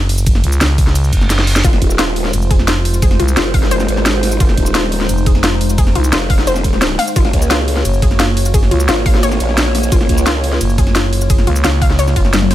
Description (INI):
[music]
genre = dark technical drum and bass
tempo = 174 BPM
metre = 4/4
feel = straight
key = unclear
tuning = A4 = 437 Hz
[part]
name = growling FM bass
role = bass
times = 0.0-12.5 s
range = F1 to Db2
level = -15 LUFS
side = equal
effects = none
[part]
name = drum and bass drum kit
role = drums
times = 0.1-12.5 s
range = hi-hat, ride cymbal, shaker, snare drum, toms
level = -18 LUFS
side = equal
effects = overdrive
[part]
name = electronic kick drum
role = drums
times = 0.3-12.2 s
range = none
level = -13 LUFS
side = equal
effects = overdrive
[part]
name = reverse cymbal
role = sound effects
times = 1.1-1.6 s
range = none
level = -22 LUFS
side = right 2 dB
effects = none
[part]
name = dark analog pad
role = sustained chords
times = 1.6-12.5 s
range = Ab3 to Db5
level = -21 LUFS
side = equal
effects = chorus, sidechain pumping
[part]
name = wide unison pluck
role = arpeggios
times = 1.6-12.5 s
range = F4 to F5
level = -21 LUFS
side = left 4 dB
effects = sidechain pumping, ping-pong delay
[part]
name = growl bass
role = bass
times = 1.6-10.6 s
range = Eb1 to Db2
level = -17 LUFS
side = equal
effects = chorus, tube saturation
[sound]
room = digital ambience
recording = none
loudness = -11 LUFS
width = side -13 dB against mid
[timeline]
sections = 0.0-12.5 A section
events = reverse cymbal 1.1-1.6; drum fill 1.3-1.6, 12.3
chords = 0.0 Gb5; 1.6 Fm; 7.2 Gb